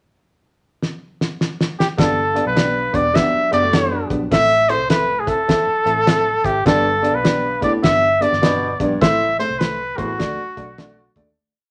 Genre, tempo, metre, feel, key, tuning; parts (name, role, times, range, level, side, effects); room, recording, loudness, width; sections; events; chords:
uptempo 1960s-style soul; 102 BPM; 4/4; swing 64% on 8ths; G major; A4 = 440 Hz
cloth-damped thuddy drum kit; drums; 0.8-11.3 s; hi-hat, kick drum, snare drum; -22 LUFS; equal
bright trumpet; melody; 1.8-11.2 s; F#4 to E5; -20 LUFS; equal
warm upright piano; accompaniment; 2.0-11.3 s; G2 to E5; -25 LUFS; equal
vintage muted fingered electric bass; bass; 2.0-11.3 s; E1 to Eb2; -32 LUFS; equal
vintage hollow-body jazz guitar; riff; 3.1-4.3 s; F#3 to G4; -29 LUFS; equal
warm baritone saxophone; riff; 6.7-10.2 s; E2 to B2; -27 LUFS; equal
wet studio reverb, RT60 0.7 s; -18 LUFS; mono
0.0-2.0 pickup bar; 2.0-11.4 verse
drum fill 0.8-2.0; fade-out 9.0-11.4
0.0 N.C.; 2.0 G; 4.3 Am; 6.7 G; 9.0 Am; 10.2 D